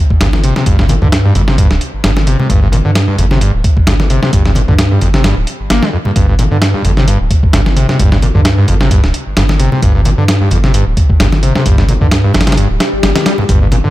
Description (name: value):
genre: breakbeat, breaks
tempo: 131 BPM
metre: 4/4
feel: swing 55% on 16ths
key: G minor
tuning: A4 = 444 Hz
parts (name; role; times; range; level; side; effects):
- saturated sub bass; bass; 0.1-13.9 s; D1 to G2; -13 LUFS; equal; none
- dusty soul sampler-style drum kit; drums; 0.1-13.8 s; hi-hat, kick drum, snare drum; -12 LUFS; equal; none
- screaming distorted acid line; riff; 0.2-13.9 s; F2 to Bb3; -14 LUFS; equal; distortion, lush chorus, cassette tape, tape echo
- congas; percussion; 0.3-13.8 s; none; -22 LUFS; left 2 dB; none
- swell; sound effects; 12.7-13.5 s; none; -18 LUFS; left 4 dB; none
room: little or no reverb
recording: none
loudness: -9 LUFS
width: side -16 dB against mid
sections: 0.0-13.9 A section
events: swell 12.7-13.5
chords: none